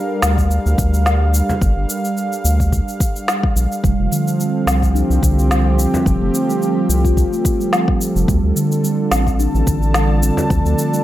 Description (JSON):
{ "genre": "organic downtempo", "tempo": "108 BPM", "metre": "4/4", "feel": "swing 55% on 16ths", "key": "G minor", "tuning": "A4 = 444 Hz", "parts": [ { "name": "warm analog pad", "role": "sustained chords", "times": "0.0-11.0 s", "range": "D3 to A5", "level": "-21 LUFS", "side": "right 1 dB", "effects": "chorus, sidechain pumping" }, { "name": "round analog bass", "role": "bass", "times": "0.2-10.7 s", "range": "F1 to D2", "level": "-16 LUFS", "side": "equal", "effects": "none" }, { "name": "electronic snare drum and shaker", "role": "drums", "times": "0.2-11.0 s", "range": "none", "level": "-22 LUFS", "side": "left 1 dB", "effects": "none" }, { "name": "electronic kick drum", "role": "drums", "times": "0.4-10.6 s", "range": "none", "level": "-18 LUFS", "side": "equal", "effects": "none" }, { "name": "frame drum", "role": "percussion", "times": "1.5-1.6, 5.9-6.0, 10.4-10.5 s", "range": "none", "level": "-24 LUFS", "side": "left 1 dB", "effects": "none" }, { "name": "steel tongue drum", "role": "arpeggios", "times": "3.8-11.0 s", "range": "D3 to F4", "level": "-19 LUFS", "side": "right 1 dB", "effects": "tape echo" } ], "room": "light reverb", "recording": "none", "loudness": "-14 LUFS", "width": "side -14 dB against mid", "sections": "0.0-11.0 A section", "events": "none", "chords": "0.0 Gm7; 3.8 Fadd9; 8.3 Dm", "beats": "0.51 1.06 | 1.62 2.17 2.73 3.28 | 3.84 4.39 4.95 5.50 | 6.06 6.62 7.17 7.73 | 8.28 8.84 9.39 9.95 | 10.51" }